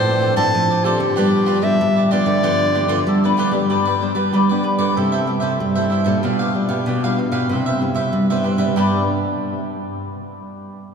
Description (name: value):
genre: samba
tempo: 95 BPM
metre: 4/4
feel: straight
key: G major from 3.7 s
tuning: A4 = 441 Hz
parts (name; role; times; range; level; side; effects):
- clear clarinet; melody; 0.0-3.4 s; G4 to A5; -20 LUFS; left 1 dB; none
- cavaquinho; accompaniment; 0.0-9.0 s; D4 to F5; -24 LUFS; right 2 dB; none
- nylon-string guitar; accompaniment; 0.0-9.6 s; G2 to A4; -24 LUFS; left 2 dB; none
- nylon-string guitar; bass; 0.0-9.1 s; G2 to A3; -20 LUFS; right 1 dB; none
- mandolin; second line; 2.7-9.1 s; G4 to C5; -25 LUFS; left 4 dB; none
room: wet cathedral reverb, RT60 5.2 s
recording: recorded in a church or concert hall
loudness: -16 LUFS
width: side -6 dB against mid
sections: 0.0-3.7 A section; 3.7-8.8 B section; 8.8-10.9 C section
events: none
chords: 0.0 Dm7; 1.2 G7; 3.7 G; 5.0 C6; 6.2 G7/B; 7.5 Cmaj7; 8.8 G